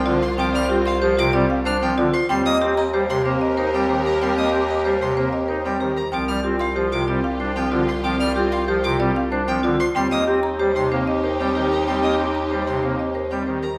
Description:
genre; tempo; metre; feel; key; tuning
classical, minimalist pattern music; 188 BPM; 6/4; straight; unclear; A4 = 442 Hz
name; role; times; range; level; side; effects
rich studio string section; sustained chords; 0.0-13.6 s; Eb4 to C5; -32 LUFS; equal; none
rich violin; arpeggios; 0.0-13.7 s; Eb5 to F6; -32 LUFS; equal; none
vibraphone with hard mallets; arpeggios; 0.0-13.7 s; C4 to Eb5; -26 LUFS; equal; none
clear bass clarinet; bass; 0.0-13.7 s; C2 to Eb2; -28 LUFS; equal; none
buzzing marimba with hard mallets; melody; 0.1-13.8 s; G4 to C6; -29 LUFS; equal; none
pipe organ, soft reed; accompaniment; 0.1-13.6 s; C3 to Eb4; -28 LUFS; equal; none
room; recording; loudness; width
wet large studio reverb, RT60 1.3 s; heard from further back in the room; -21 LUFS; mono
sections
0.0-13.8 A section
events
none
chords
0.0 Csus4; 2.3 Eb; 6.1 Csus4; 10.0 Eb

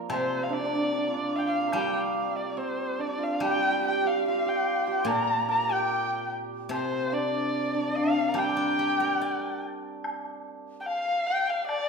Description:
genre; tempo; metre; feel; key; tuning
chinese traditional, Chinese chamber ensemble; 73 BPM; 2/4; rubato; G yu mode; A4 = 440 Hz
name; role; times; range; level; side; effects
hammered dulcimer; second line; 0.0-11.9 s; Bb3 to Bb4; -30 LUFS; right 3 dB; none
steel-string zither; accompaniment; 0.0-10.9 s; Bb2 to D5; -35 LUFS; left 2 dB; none
dark erhu; melody; 0.1-11.9 s; C5 to Bb5; -28 LUFS; left 1 dB; none
woodblock; percussion; 0.1-11.9 s; none; -38 LUFS; right 1 dB; none
large dizi; second line; 3.4-11.9 s; C5 to C6; -34 LUFS; left 4 dB; none
room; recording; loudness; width
wet recital hall reverb, RT60 1.4 s; recorded in a church or concert hall; -25 LUFS; side -5 dB against mid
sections
0.0-10.0 A section; 10.0-11.9 B section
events
none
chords
none

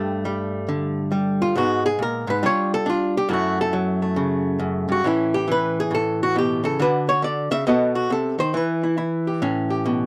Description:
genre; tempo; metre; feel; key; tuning
solo jazz; 137 BPM; 4/4; swing 65% on 8ths; unclear; A4 = 440 Hz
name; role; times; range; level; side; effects
archtop guitar, miked and amplified; solo; 0.0-10.1 s; F#2 to E5; -22 LUFS; equal; none
room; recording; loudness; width
light reverb; dry, close 1970s-style studio recording; -22 LUFS; mono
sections
0.0-10.1 A section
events
hollow-body jazz guitar solo 0.0-10.1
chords
0.0 Gsus2; 1.5 G#madd9; 2.4 G5; 3.3 F#m7; 5.0 Aadd9; 6.8 D; 7.7 B7b9; 8.5 Em; 9.4 A7

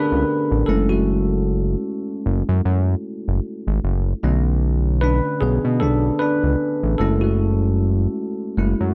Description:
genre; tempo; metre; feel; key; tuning
contemporary R&B; 76 BPM; 4/4; swing 58% on 16ths; B dorian; A4 = 440 Hz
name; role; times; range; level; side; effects
bell-like tine electric piano; accompaniment; 0.0-8.9 s; D3 to B4; -24 LUFS; equal; lush chorus
fat analog bass; bass; 0.1-8.9 s; F#1 to B2; -21 LUFS; equal; none
room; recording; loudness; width
light reverb; dark, warm production; -20 LUFS; mono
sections
0.0-8.9 A section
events
tine electric piano solo 0.0-8.9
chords
0.0 Bm7; 0.7 F#m7; 4.2 Bm7; 7.0 F#m7

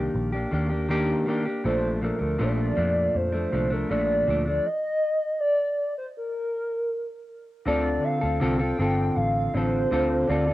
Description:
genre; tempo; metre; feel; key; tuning
indie pop, bedroom pop; 80 BPM; 4/4; straight; unclear; A4 = 438 Hz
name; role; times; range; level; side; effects
clean electric guitar; accompaniment; 0.0-10.5 s; Bb2 to A4; -25 LUFS; left 1 dB; wide subtle chorus, vibrato effect, cassette tape
vintage muted picked electric bass; bass; 0.0-10.5 s; G1 to F2; -28 LUFS; equal; none
hollow clarinet-like synth lead; melody; 1.6-10.5 s; Bb4 to G5; -26 LUFS; equal; lush chorus, cassette tape
room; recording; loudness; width
light reverb; home recording on cassette; -23 LUFS; side -16 dB against mid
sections
0.0-7.7 A section; 7.7-10.5 B section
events
stop 4.7-7.7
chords
0.0 Ebmaj7; 1.7 Bbmaj7; 4.7 N.C.; 7.7 Dm7

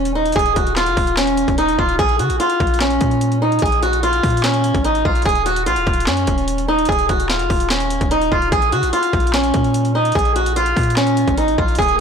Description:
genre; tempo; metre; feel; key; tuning
hip hop, trap; 147 BPM; 4/4; half-time; Bb minor; A4 = 439 Hz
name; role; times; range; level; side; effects
fingerpicked swing-style acoustic guitar; melody; 0.0-12.0 s; Db4 to Ab4; -16 LUFS; right 1 dB; none
warm 808-style bass; bass; 0.0-12.0 s; Eb1 to Db3; -22 LUFS; equal; none
trap drum kit; drums; 0.1-12.0 s; handclaps, hi-hat, kick drum, snare drum; -21 LUFS; equal; overdrive
swell; sound effects; 11.9-12.0 s; none; -30 LUFS; left 3 dB; none
room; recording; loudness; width
light reverb, digital ambience; blown-out, overdriven recording, overdrive; -14 LUFS; side -6 dB against mid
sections
0.0-12.0 A section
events
swell 11.9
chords
0.0 N.C.; 2.0 Bbm; 5.3 N.C.; 8.5 Bbm

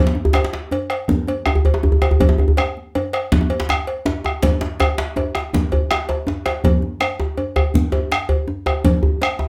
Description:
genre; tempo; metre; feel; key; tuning
west african traditional, West African drum ensemble; 108 BPM (dotted quarters); 12/8; straight; none; none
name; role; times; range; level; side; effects
djembe; percussion; 0.1-9.4 s; none; -27 LUFS; equal; none
djembe; percussion; 0.1-9.5 s; none; -21 LUFS; equal; none
bombo; percussion; 0.3-9.5 s; none; -24 LUFS; equal; none
congas; percussion; 0.3-9.4 s; none; -24 LUFS; equal; none
cowbell; percussion; 0.3-9.4 s; none; -27 LUFS; equal; none
room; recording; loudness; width
moderate studio reverb, RT60 0.5 s; none; -19 LUFS; mono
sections
0.0-9.5 A section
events
none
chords
none

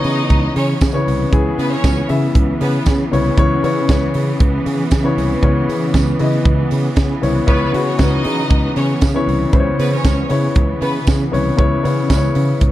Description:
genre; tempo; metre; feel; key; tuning
disco; 117 BPM; 4/4; straight; C# minor; A4 = 439 Hz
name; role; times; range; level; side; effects
bright studio string section; second line; 0.0-2.8, 7.5-11.0 s; B3 to D#5; -24 LUFS; right 1 dB; none
warm grand piano; accompaniment; 0.0-12.7 s; C#3 to E5; -18 LUFS; left 3 dB; none
rich studio string section; sustained chords; 0.0-12.7 s; C#3 to B3; -23 LUFS; right 2 dB; none
fingered electric bass; bass; 0.0-12.7 s; B#1 to C#3; -20 LUFS; right 1 dB; none
tight funk drum kit; drums; 0.0-12.7 s; hi-hat, kick drum, snare drum; -17 LUFS; right 1 dB; none
tambourine; percussion; 0.8-12.2 s; none; -36 LUFS; right 11 dB; none
room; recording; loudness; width
small room ambience; dark, warm production; -13 LUFS; side -14 dB against mid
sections
0.0-12.7 A section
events
none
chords
0.0 C#m7

